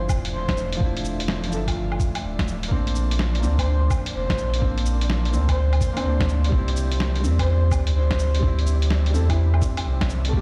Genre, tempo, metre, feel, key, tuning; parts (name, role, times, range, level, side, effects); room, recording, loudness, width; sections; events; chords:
future garage; 126 BPM; 4/4; swing 65% on 16ths; A4 = 440 Hz
felt-muted upright piano; accompaniment; 0.0-10.4 s; F3 to E5; -33 LUFS; equal; sidechain pumping, dub echo
deep dark ambient pad; sustained chords; 0.0-10.4 s; F3 to E5; -37 LUFS; equal; chorus, built-in reverb, sidechain pumping
warm sub bass; bass; 0.0-10.4 s; D1 to E2; -24 LUFS; equal; sidechain pumping
flickering grainy texture; texture; 0.1-10.4 s; D4 to D5; -44 LUFS; equal
electronic kick drum; drums; 0.1-10.4 s; -26 LUFS; equal
lo-fi sampler-style drum kit; drums; 0.1-10.3 s; cabasa, hi-hat, snare drum, woodblock; -32 LUFS; equal
breathy flute-like synth lead; melody; 0.3-9.6 s; E4 to C5; -35 LUFS; equal; lush chorus, delay
digital ambience; played on a big sound system in a bare room, stone room reverb; -22 LUFS; mono
0.0-10.4 A section
0.0 Dmadd9; 2.7 Bbadd9; 6.5 C